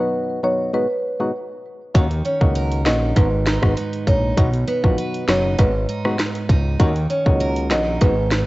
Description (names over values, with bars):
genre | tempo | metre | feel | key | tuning
dancehall | 99 BPM | 4/4 | straight | G# minor | A4 = 440 Hz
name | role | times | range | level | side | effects
percussive organ stab | accompaniment | 0.0-8.1 s | F#3 to F#4 | -25 LUFS | left 2 dB | chorus
marimba with medium mallets | melody | 0.4-8.4 s | B4 to D#5 | -23 LUFS | right 1 dB | none
picked steel-string acoustic guitar | arpeggios | 1.9-8.5 s | G#2 to B4 | -26 LUFS | right 3 dB | none
fat analog bass | bass | 1.9-8.4 s | F#1 to D#2 | -21 LUFS | equal | none
island pop drum kit | drums | 1.9-8.5 s | hi-hat, kick drum, rim click, snare drum | -18 LUFS | equal | vintage 12-bit sampler grit
room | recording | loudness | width
little or no reverb | worn, warbling old tape, cassette tape, warbly pitch drift, nothing above 7.9 kHz | -17 LUFS | side -19 dB against mid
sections
0.0-8.5 A section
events
none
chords
0.0 B; 0.7 G#m7; 1.9 D#m7; 3.2 G#m7; 4.4 B; 5.6 G#m7; 6.8 D#m7